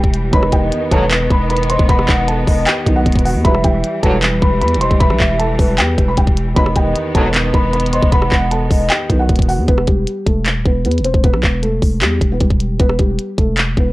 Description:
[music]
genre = hip hop, trap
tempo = 154 BPM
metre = 4/4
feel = half-time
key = E harmonic minor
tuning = A4 = 440 Hz
[part]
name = felt-muted upright piano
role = melody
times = 0.0-13.9 s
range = G3 to C6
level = -20 LUFS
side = equal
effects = tape echo
[part]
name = dark baby grand piano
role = accompaniment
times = 0.0-9.7 s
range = E2 to B4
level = -25 LUFS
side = right 3 dB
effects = none
[part]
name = rich symphonic string section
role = sustained chords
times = 0.0-9.7 s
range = D#3 to B3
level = -23 LUFS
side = equal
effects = none
[part]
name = growling 808-style bass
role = bass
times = 0.0-13.9 s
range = D#1 to E2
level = -18 LUFS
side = equal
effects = none
[part]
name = glitchy drum kit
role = drums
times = 0.0-13.9 s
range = handclaps, hi-hat, kick drum, rim click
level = -15 LUFS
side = equal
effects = none
[part]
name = hollow clarinet-like synth lead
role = second line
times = 0.3-9.3 s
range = B4 to F#5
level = -22 LUFS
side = equal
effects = chorus, tape echo
[part]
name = dark brass ensemble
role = stabs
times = 0.3-1.0, 3.4-4.2, 6.6-7.3 s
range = B1 to F#3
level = -21 LUFS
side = equal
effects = none
[sound]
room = small room ambience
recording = dry, gritty hardware recording, cassette tape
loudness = -12 LUFS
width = side -19 dB against mid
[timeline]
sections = 0.0-9.7 A section; 9.7-13.9 B section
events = none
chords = 0.3 B/E; 3.4 Em; 6.6 B/E; 9.7 Em; 12.8 B5/E

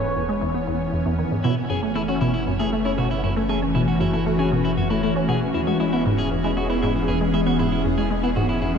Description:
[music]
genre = ambient, sequencer-driven space music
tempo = 117 BPM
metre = 4/4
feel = straight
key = E major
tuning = A4 = 440 Hz
[part]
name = evolving wavetable pad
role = sustained chords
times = 0.0-8.8 s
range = E3 to G#5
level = -24 LUFS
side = left 1 dB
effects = ensemble chorus, built-in reverb
[part]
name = resonant blip pluck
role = riff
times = 0.0-8.8 s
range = E2 to C#4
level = -23 LUFS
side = equal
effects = wide subtle chorus, tape echo
[part]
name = warm sub bass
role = bass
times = 0.0-8.8 s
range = E1 to F#1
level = -30 LUFS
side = equal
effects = none
[part]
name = electric guitar at the edge of break-up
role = arpeggios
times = 1.4-8.7 s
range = E4 to G#4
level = -28 LUFS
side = moving between left 3 dB and right 5 dB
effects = auto-pan, tape echo
[sound]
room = wet lush hall reverb, RT60 2.6 s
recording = dark, warm production, lossy compression artefacts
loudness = -19 LUFS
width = side -7 dB against mid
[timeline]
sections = 0.0-8.8 A section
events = fade-in on sub bass 0.0-8.8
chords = 0.0 E6; 1.4 F#m7; 5.5 E6

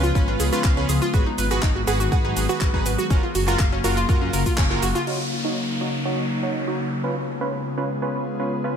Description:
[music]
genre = progressive house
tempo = 122 BPM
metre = 4/4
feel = straight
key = Eb minor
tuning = A4 = 439 Hz
[part]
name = airy breathy pad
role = sustained chords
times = 0.0-8.8 s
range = Db3 to F5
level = -27 LUFS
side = left 2 dB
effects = chorus, sidechain pumping
[part]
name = analog pluck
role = arpeggios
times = 0.0-5.0 s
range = Db4 to Gb5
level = -26 LUFS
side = equal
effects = chorus, sidechain pumping, analog delay
[part]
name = supersaw stab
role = stabs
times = 0.0-8.8 s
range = Db4 to Db5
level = -27 LUFS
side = right 3 dB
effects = vintage 12-bit sampler grit, sidechain pumping, low-pass filter, analog delay
[part]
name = dark detuned saw bass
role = bass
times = 0.0-4.9 s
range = Gb1 to Ab2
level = -25 LUFS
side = equal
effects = tube saturation, sidechain pumping
[part]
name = house drum kit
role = drums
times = 0.0-5.2 s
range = cabasa, crash cymbal, handclaps, hi-hat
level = -30 LUFS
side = equal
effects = none
[part]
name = electronic kick drum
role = drums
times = 0.2-4.7 s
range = none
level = -21 LUFS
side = equal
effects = none
[part]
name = downlifter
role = sound effects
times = 5.1-8.8 s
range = none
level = -32 LUFS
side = equal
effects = none
[sound]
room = moderate lush hall reverb, RT60 1.8 s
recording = dreamy mix soaked in reverb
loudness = -20 LUFS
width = side -8 dB against mid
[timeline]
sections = 0.0-5.1 A section; 5.1-8.8 B section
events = drop 0.0-5.1; band accent 4.6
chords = 0.0 Db7; 1.1 Abm7; 3.1 Gbmaj7; 5.1 Ebm7; 7.0 Db7

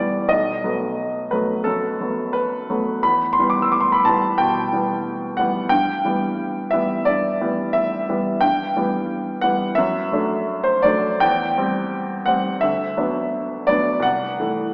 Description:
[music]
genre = classical, romantic character piece for solo piano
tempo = 87 BPM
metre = 4/4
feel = uneven beats, rubato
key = E minor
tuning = A4 = 440 Hz
[part]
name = clear baby grand piano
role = solo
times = 0.0-14.7 s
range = B1 to E6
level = -21 LUFS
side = equal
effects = none
[sound]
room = wet concert hall reverb, RT60 2.1 s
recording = heard from further back in the room, small speaker sound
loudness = -21 LUFS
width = mono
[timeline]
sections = 0.0-14.7 A section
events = none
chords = 0.3 B7; 3.0 Em; 5.7 Em/G; 9.8 D/F#; 11.2 C/E; 12.6 Bm/D; 14.0 Am/C

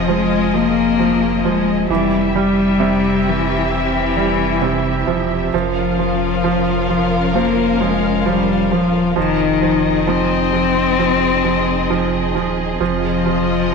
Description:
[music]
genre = pop ballad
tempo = 66 BPM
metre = 4/4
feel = straight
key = F minor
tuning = A4 = 440 Hz
[part]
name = warm cello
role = melody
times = 0.0-13.7 s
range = Eb3 to C4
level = -17 LUFS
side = left 8 dB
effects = none
[part]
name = bright upright piano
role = accompaniment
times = 0.0-13.7 s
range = C3 to G3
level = -19 LUFS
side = right 8 dB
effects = none
[part]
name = warm studio string section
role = sustained chords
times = 0.0-13.7 s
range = C4 to F5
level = -23 LUFS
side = left 1 dB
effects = none
[part]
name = warm sub bass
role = bass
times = 0.0-13.7 s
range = Eb1 to F1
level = -26 LUFS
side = equal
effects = none
[sound]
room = wet echo chamber reverb, RT60 2.2 s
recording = 1960s-style stereo with parts hard left and right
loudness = -14 LUFS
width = side -5 dB against mid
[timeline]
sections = 0.0-13.7 A section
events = none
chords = 0.0 Fm7; 1.9 C/F; 5.5 Bbm/F; 9.2 Fm7

